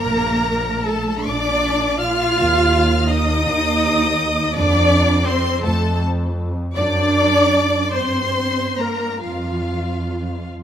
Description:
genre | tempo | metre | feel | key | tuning
classical, slow romantic movement for string orchestra | 46-56 BPM (dotted quarters) | 6/8 | rubato | unclear | A4 = 440 Hz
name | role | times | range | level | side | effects
rich chamber violin section | melody | 0.0-10.5 s | F5 to F6 | -23 LUFS | left 3 dB | none
rich chamber violin section | second line | 0.0-10.5 s | F4 to F5 | -26 LUFS | left 4 dB | none
warm chamber viola section | accompaniment | 0.0-10.5 s | F4 to F5 | -23 LUFS | right 1 dB | none
rich chamber double bass section | bass | 0.0-10.6 s | Bb1 to G2 | -22 LUFS | right 1 dB | none
warm chamber cello section | bass | 0.0-10.5 s | F3 to F4 | -22 LUFS | right 2 dB | none
room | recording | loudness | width
moderate scoring stage reverb, RT60 1.6 s | none | -16 LUFS | side -9 dB against mid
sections
0.0-10.6 A section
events
none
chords
0.0 Bbmaj7; 2.4 Ebsus2; 4.5 F; 6.7 D/F#; 7.9 Gm; 9.2 N.C.

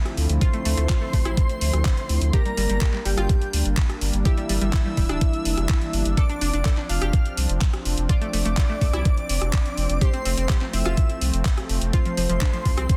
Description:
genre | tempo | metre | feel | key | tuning
progressive house | 125 BPM | 4/4 | straight | D minor | A4 = 440 Hz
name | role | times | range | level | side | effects
warm analog pad | sustained chords | 0.0-13.0 s | D3 to E4 | -34 LUFS | equal | chorus, sidechain pumping
analog pluck | arpeggios | 0.0-13.0 s | F3 to A4 | -34 LUFS | equal | chorus, sidechain pumping, delay
pop drum kit | drums | 0.1-13.0 s | handclaps, hi-hat, rim click | -33 LUFS | equal | overdrive
saturated sub bass | bass | 0.2-12.9 s | D1 to D2 | -26 LUFS | equal | sidechain pumping
soft octave-layered synth lead | melody | 0.4-13.0 s | E4 to F5 | -34 LUFS | equal | chorus, phaser, tape echo
airy dreamy lead | second line | 0.4-13.0 s | E5 to F6 | -38 LUFS | equal | chorus, sidechain pumping, delay
electronic kick drum | drums | 0.4-13.0 s | none | -23 LUFS | equal | overdrive
room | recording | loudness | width
digital ambience | dense, heavily limited modern master | -22 LUFS | mono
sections
0.0-13.0 A section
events
none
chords
0.0 Dm7; 2.3 Gm; 6.2 Dm7/F; 10.0 F

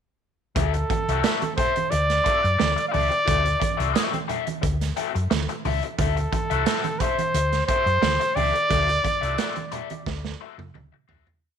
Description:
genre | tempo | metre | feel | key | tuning
funk | 88 BPM | 4/4 | straight | D mixolydian | A4 = 440 Hz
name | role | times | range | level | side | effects
warm trumpet | melody | 0.6-10.4 s | A4 to F5 | -23 LUFS | equal | none
raw garage guitar | accompaniment | 0.6-11.3 s | C4 to E5 | -29 LUFS | left 13 dB | wah, overdrive
hollow-body short-scale fingered electric bass | bass | 0.6-11.2 s | C2 to F#2 | -25 LUFS | left 1 dB | none
raw garage drum kit | drums | 0.6-11.4 s | hi-hat, kick drum, snare drum, toms | -28 LUFS | right 4 dB | none
congas | percussion | 0.6-11.3 s | none | -34 LUFS | right 9 dB | none
room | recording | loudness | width
light reverb | 1960s-style stereo with parts hard left and right | -21 LUFS | side -8 dB against mid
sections
0.6-11.4 A section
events
fade-out 8.7-11.4; drum fill 10.1-11.4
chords
0.6 D9

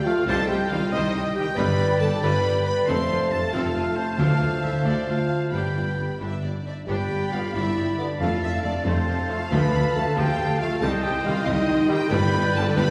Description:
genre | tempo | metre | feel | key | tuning
cinematic, heroic adventure film score | 92 BPM (dotted quarters) | 6/8 | straight | G mixolydian | A4 = 441 Hz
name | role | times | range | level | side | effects
rich symphonic violin section | melody | 0.0-12.9 s | C5 to C6 | -37 LUFS | equal | none
clear oboe | second line | 0.0-12.9 s | C5 to C6 | -34 LUFS | equal | none
dark clarinet | second line | 0.0-12.9 s | A4 to F5 | -36 LUFS | equal | none
rich symphonic violin section | second line | 0.0-12.9 s | D5 to B5 | -38 LUFS | equal | none
dark French horn section | sustained chords | 0.0-12.9 s | C4 to C5 | -29 LUFS | equal | none
warm trombone section | sustained chords | 0.1-12.6 s | C3 to B3 | -35 LUFS | equal | none
clear symphonic viola section | accompaniment | 0.3-12.9 s | C3 to C5 | -37 LUFS | equal | none
dark symphonic cello section | bass | 0.3-12.8 s | C2 to G2 | -32 LUFS | equal | none
mellow tuba | bass | 0.3-12.9 s | F1 to D2 | -33 LUFS | equal | none
rich symphonic double bass section | bass | 0.3-12.9 s | F1 to D2 | -34 LUFS | equal | none
timpani | percussion | 1.6-4.8, 9.5-12.7 s | G2 to D3 | -30 LUFS | equal | none
bright small flute group | second line | 6.7-12.9 s | C5 to B5 | -35 LUFS | equal | none
room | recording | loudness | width
wet scoring stage reverb, RT60 1.9 s | heard from further back in the room, studio reverb | -23 LUFS | mono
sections
0.0-6.9 A section; 6.9-12.9 B section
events
none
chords
0.3 Cm; 1.6 G; 2.9 F; 4.2 Dm; 5.5 G; 8.2 F; 9.5 Dm; 10.8 Cm; 12.1 G

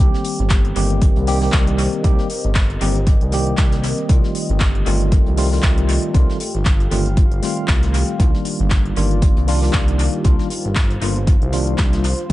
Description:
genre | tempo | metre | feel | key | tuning
deep house | 117 BPM | 4/4 | swing 57% on 16ths | C dorian | A4 = 440 Hz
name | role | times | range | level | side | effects
dark analog pad | sustained chords | 0.7-12.3 s | Eb3 to F5 | -28 LUFS | equal | chorus, sidechain pumping
tine electric piano | stabs | 0.0-12.3 s | D3 to G4 | -23 LUFS | equal | medium stereo tremolo, sidechain pumping, tape echo
smooth gliding synth bass | bass | 0.0-12.3 s | G1 to C2 | -19 LUFS | equal | none
vintage brush drum kit | drums | 0.0-12.3 s | hi-hat, snare drum | -35 LUFS | left 2 dB | sidechain pumping on hats, high-pass filter on hats, high-pass filter on snare, high-pass filter on room, tape echo
deep house drum kit | drums | 0.2-12.3 s | handclaps, hi-hat | -26 LUFS | equal | tape echo
electronic kick drum | drums | 0.5-12.3 s | none | -16 LUFS | equal | none
room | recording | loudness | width
little or no reverb | echo-heavy mix, nothing above 10.4 kHz | -15 LUFS | side -16 dB against mid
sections
0.0-12.3 A section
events
none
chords
0.0 Cm7; 4.1 F9; 8.2 Ebmaj9

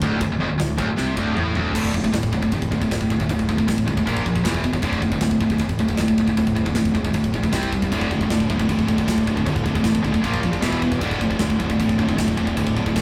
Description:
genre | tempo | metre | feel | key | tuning
heavy metal | 155 BPM | 4/4 | straight | D minor | A4 = 439 Hz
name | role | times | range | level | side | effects
distorted electric guitar | riff | 0.0-1.7, 7.9-13.0 s | D2 to Bb3 | -30 LUFS | equal | distortion
heavy high-gain guitar | riff | 0.0-13.0 s | D2 to C4 | -24 LUFS | equal | distortion
high-gain distorted guitar | riff | 0.0-13.0 s | D2 to C4 | -29 LUFS | equal | none
fuzz fingered electric bass | bass | 0.0-13.0 s | D1 to C#2 | -30 LUFS | equal | overdrive
tight metal drum kit | drums | 0.0-13.0 s | china cymbal, crash cymbal, kick drum, snare drum, toms | -28 LUFS | equal | none
room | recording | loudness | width
wet small room reverb, RT60 0.5 s | rough rehearsal-room recording | -21 LUFS | mono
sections
0.0-1.8 A section; 1.8-13.0 B section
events
drum fill 1.0-1.8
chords
0.0 Dm; 1.8 D5; 4.1 Bb5; 4.4 E5; 4.8 D5; 7.5 C5; 7.9 D5; 10.2 Bb5; 10.6 E5; 11.0 D5

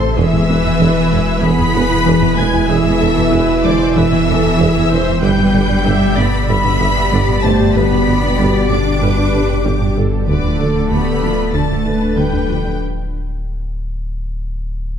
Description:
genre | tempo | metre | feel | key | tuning
cinematic, hybrid orchestral and electronic film score | 95 BPM | 4/4 | straight | unclear | A4 = 441 Hz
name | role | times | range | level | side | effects
rich symphonic violin section | melody | 0.0-12.8 s | C6 to D7 | -25 LUFS | left 2 dB | none
clear symphonic violin section | second line | 0.0-12.8 s | C5 to D6 | -22 LUFS | left 2 dB | none
clear symphonic viola section | accompaniment | 0.0-12.8 s | F4 to E5 | -24 LUFS | right 1 dB | none
chorused pulse-width pad | sustained chords | 0.0-12.8 s | B2 to G#5 | -22 LUFS | left 2 dB | none
mellow French horn section | sustained chords | 0.0-12.8 s | B2 to A4 | -21 LUFS | equal | none
glassy wavetable pluck | arpeggios | 0.0-12.7 s | D3 to A4 | -21 LUFS | left 2 dB | chorus
clear symphonic cello section | bass | 0.0-12.8 s | C3 to D4 | -20 LUFS | right 2 dB | none
pure sine sub bass | bass | 0.0-15.0 s | D1 to A1 | -22 LUFS | left 1 dB | none
rich symphonic double bass section | bass | 0.0-12.7 s | A1 to G2 | -20 LUFS | right 3 dB | none
warm tuba | bass | 0.2-12.6 s | E1 to D2 | -22 LUFS | right 2 dB | none
room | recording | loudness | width
moderate scoring stage reverb, RT60 1.9 s | dark, warm production | -12 LUFS | side -8 dB against mid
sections
0.0-15.0 A section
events
break 12.8-15.0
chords
0.2 E; 5.2 G; 10.3 Dm

